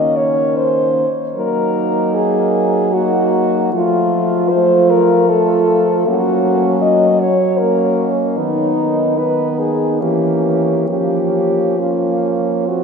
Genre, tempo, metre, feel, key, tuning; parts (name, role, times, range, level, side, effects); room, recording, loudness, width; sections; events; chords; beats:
classical, lyrical piece for horn quartet; 66-80 BPM; 3/4; rubato; Bb minor; A4 = 440 Hz
warm French horn; melody; 0.0-12.7 s; D#4 to Eb5; -16 LUFS; left 3 dB
warm French horn; second line; 0.0-12.8 s; C4 to F4; -21 LUFS; right 5 dB
clear French horn; accompaniment; 0.0-12.8 s; A3 to Gb4; -21 LUFS; left 1 dB
mellow French horn; bass; 0.0-12.8 s; Eb3 to Gb3; -19 LUFS; right 3 dB
wet cathedral reverb, RT60 5.5 s; recorded in a church or concert hall; -13 LUFS; side -5 dB against mid
0.0-12.8 A section
0.0 Eb7(no3); 1.4 Ebm/Gb; 3.7 F; 6.1 Gb; 8.4 B/D#; 10.0 Edim7; 10.9 Bbm/F
0.57 | 1.36 2.16 2.95 | 3.74 4.52 5.30 | 6.08 6.83 7.60 | 8.38 9.18 10.01 | 10.89 11.79 12.69